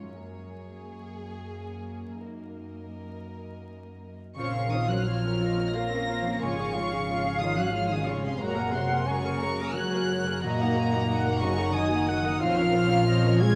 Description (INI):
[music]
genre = cinematic, emotional film score for orchestra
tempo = 90 BPM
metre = 3/4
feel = rubato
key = Bb minor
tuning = A4 = 439 Hz
[part]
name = warm studio violin section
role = melody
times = 0.0-13.6 s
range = Db5 to Bb6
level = -38 LUFS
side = equal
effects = none
[part]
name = dark studio violin section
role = second line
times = 0.0-13.6 s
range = F4 to Gb5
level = -39 LUFS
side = equal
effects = none
[part]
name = warm chamber viola section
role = accompaniment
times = 0.0-13.6 s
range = Gb3 to Bb4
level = -39 LUFS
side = equal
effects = none
[part]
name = concert harp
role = arpeggios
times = 0.0-13.6 s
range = Gb2 to C6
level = -40 LUFS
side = equal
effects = none
[part]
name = dark studio cello section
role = bass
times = 0.0-13.6 s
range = Gb2 to Bb3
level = -35 LUFS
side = equal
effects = none
[part]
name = flute section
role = second line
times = 4.4-13.6 s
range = Db5 to Bb5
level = -34 LUFS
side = equal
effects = none
[part]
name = mellow French horn section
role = sustained chords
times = 4.4-13.6 s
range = C3 to Bb4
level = -34 LUFS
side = equal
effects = none
[part]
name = warm studio double bass section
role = bass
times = 4.4-13.6 s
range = Gb1 to Bb1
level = -34 LUFS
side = equal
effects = none
[sound]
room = moderate scoring stage reverb, RT60 1.9 s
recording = vinyl crackle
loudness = -27 LUFS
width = mono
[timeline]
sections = 0.0-4.4 A section; 4.4-13.6 B section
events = none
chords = 0.2 Gbadd9; 2.2 Ebm/Gb; 4.4 Bbmadd9; 6.4 Db/Ab; 8.4 Gbadd9; 10.4 Ebm/Gb; 12.4 Bbmadd9